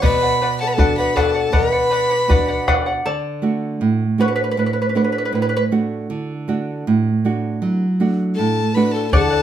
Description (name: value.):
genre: andean folk, Andean ensemble.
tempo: 79 BPM.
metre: 2/4.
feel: straight.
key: unclear.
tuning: A4 = 440 Hz.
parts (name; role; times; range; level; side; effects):
mellow hollow polished pan flute; melody; 0.0-2.7, 8.3-9.4 s; A4 to B4; -20 LUFS; left 4 dB; none.
bright violin; second line; 0.0-2.7, 8.4-9.4 s; A5 to B5; -22 LUFS; right 1 dB; none.
charango; accompaniment; 0.0-5.6, 9.1-9.4 s; F#4 to F#5; -21 LUFS; equal; none.
nylon-string guitar; accompaniment; 0.0-9.4 s; A2 to F#4; -20 LUFS; right 3 dB; none.
bombo; percussion; 0.0-2.9, 9.1-9.3 s; none; -19 LUFS; left 1 dB; none.
room: wet studio reverb, RT60 0.7 s.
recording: none.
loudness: -16 LUFS.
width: side -10 dB against mid.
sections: 0.0-3.1 A section; 3.1-9.1 B section.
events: charango solo 3.1-9.1.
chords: 0.0 Bm; 3.1 D.